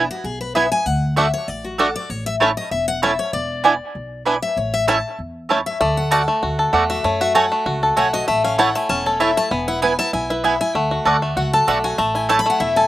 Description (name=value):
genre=bluegrass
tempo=194 BPM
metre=4/4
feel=swing 54% on 8ths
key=A major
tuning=A4 = 441 Hz
part: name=picked steel-string acoustic guitar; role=accompaniment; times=0.0-12.9 s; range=F#4 to B5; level=-22 LUFS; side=left 4 dB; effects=none
part: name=mandolin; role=stabs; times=0.0-12.4 s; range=A3 to A5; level=-17 LUFS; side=right 4 dB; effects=none
part: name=upright bass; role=bass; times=0.0-12.9 s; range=E1 to F#2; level=-26 LUFS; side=equal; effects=none
part: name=bluegrass banjo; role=arpeggios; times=0.6-12.9 s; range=A3 to A4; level=-19 LUFS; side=equal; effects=slapback echo
room=little or no reverb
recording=recorded outdoors, with no room sound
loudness=-16 LUFS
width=side -14 dB against mid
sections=0.0-5.8 A section; 5.8-12.9 A section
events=steel-string acoustic guitar solo 0.0-12.9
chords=0.0 E; 0.9 D; 2.1 A; 3.3 E7; 4.6 A; 5.8 D; 7.0 F#madd9; 8.3 A; 9.5 E; 10.8 D; 12.0 A5